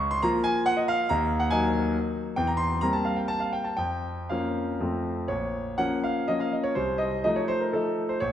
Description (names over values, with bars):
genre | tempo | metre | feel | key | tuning
classical, romantic triple-time dance for piano with dotted rhythms | 112-148 BPM | 3/4 | rubato | Bb minor | A4 = 440 Hz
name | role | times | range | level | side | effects
bright concert grand piano | solo | 0.0-8.3 s | Bb1 to Db6 | -24 LUFS | equal | none
room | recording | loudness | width
wet recital hall reverb, RT60 1.6 s | dark, warm production | -24 LUFS | side -10 dB against mid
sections
0.0-5.3 A section; 5.3-8.3 B section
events
none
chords
0.0 Bbm/Db; 1.1 Ebm; 2.4 C7/E; 3.8 Bbm/F; 4.8 F; 5.3 Bbm; 6.8 F7/C